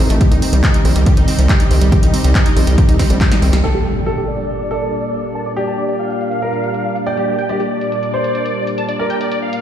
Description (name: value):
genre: uplifting trance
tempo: 140 BPM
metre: 4/4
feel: straight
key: G minor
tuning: A4 = 440 Hz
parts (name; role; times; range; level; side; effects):
- lush unison pad; sustained chords; 0.0-9.6 s; Bb2 to Eb4; -22 LUFS; left 1 dB; chorus, sidechain pumping
- wide unison pluck; arpeggios; 0.0-3.6 s; G3 to G4; -22 LUFS; right 4 dB; sidechain pumping, digital delay
- gritty driven synth bass; bass; 0.0-3.6 s; A1 to C2; -13 LUFS; equal; sidechain pumping
- punchy analog drum machine; drums; 0.0-9.6 s; crash cymbal, handclaps, hi-hat, snare drum; -23 LUFS; equal; sidechain pumping on hats, low-pass filter on hats, low-pass filter on snare, sidechain pumping on cymbals, low-pass filter on cymbals
- electronic kick drum; drums; 0.2-3.3 s; none; -14 LUFS; equal; none
- dense compressed supersaw; melody; 3.6-9.6 s; G4 to A5; -21 LUFS; equal; sidechain pumping, low-pass filter, digital delay
- warm baby grand piano; second line; 3.6-9.6 s; G4 to D5; -22 LUFS; right 2 dB; digital delay
- impact; sound effects; 3.6-5.4 s; none; -22 LUFS; equal; none
room: light reverb, digital ambience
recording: played on a big sound system in a bare room, large studio reverb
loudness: -13 LUFS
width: side -10 dB against mid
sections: 0.0-3.6 A section; 3.6-9.6 B section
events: filter sweep on analog synth pad 0.0-3.6; drum fill 3.0-3.6; band accent 3.5; impact 3.6-5.3; filter sweep on drum 3.6-9.6; filter sweep on supersaw synth 3.6-9.6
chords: 0.2 Cm; 3.6 Gmadd9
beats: | 0.21 0.64 1.06 1.49 | 1.92 2.35 2.78 3.21 | 3.64 4.07 4.49 4.92 | 5.35 5.78 6.21 6.64 | 7.07 7.49 7.92 8.35 | 8.78 9.21